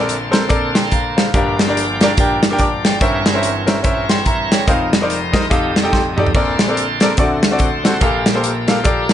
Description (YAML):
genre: uptempo gospel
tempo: 144 BPM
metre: 4/4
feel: swing 60% on 8ths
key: Bb major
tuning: A4 = 442 Hz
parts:
  - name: bright grand piano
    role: accompaniment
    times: 0.0-9.1 s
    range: F1 to D6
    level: -17 LUFS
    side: left 1 dB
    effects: none
  - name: bright tonewheel organ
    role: sustained chords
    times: 0.0-9.1 s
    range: G2 to Eb5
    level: -22 LUFS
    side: right 2 dB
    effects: slow rotary speaker, overdrive
  - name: modern studio drum kit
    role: drums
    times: 0.1-9.1 s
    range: hi-hat, kick drum, snare drum, splash cymbal, toms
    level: -16 LUFS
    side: equal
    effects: none
room: light reverb, small room ambience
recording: nothing above 10.3 kHz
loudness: -13 LUFS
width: side -10 dB against mid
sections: 0.0-9.1 A section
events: grand piano fill 2.4-3.0, 5.7-6.3; drum fill 5.9-6.3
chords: 0.0 Bbmaj9; 1.3 Gm7; 3.0 C7b9/G; 4.7 F7sus4; 5.5 F9; 6.3 Bbmaj9; 7.2 D7; 8.0 Gm9/Bb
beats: 0.08 0.50 0.92 | 1.33 1.75 2.17 2.59 | 3.00 3.42 3.84 4.26 | 4.67 5.09 5.51 5.93 | 6.34 6.76 7.18 7.60 | 8.02 8.44 8.85